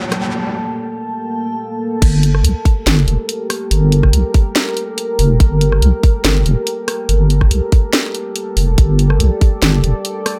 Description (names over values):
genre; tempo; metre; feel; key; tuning
deep dubstep; 142 BPM; 4/4; half-time; G minor; A4 = 440 Hz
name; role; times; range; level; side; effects
deep dark ambient pad; sustained chords; 0.0-10.4 s; Bb3 to A5; -24 LUFS; equal; chorus, built-in reverb
garage drum kit; drums; 0.1-10.3 s; crash cymbal, hi-hat, rim click, snare drum; -21 LUFS; equal; none
deep soft wobble bass; bass; 2.0-9.9 s; F1 to C2; -14 LUFS; equal; chorus
electronic kick drum; drums; 2.0-9.5 s; none; -14 LUFS; equal; high-pass filter on kick
room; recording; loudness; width
little or no reverb; none; -15 LUFS; mono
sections
0.0-2.0 A section; 2.0-10.4 B section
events
build-up 0.0-2.0; filter sweep on ambient pad 0.0-2.0; drop 2.0-10.4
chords
0.0 Gmadd9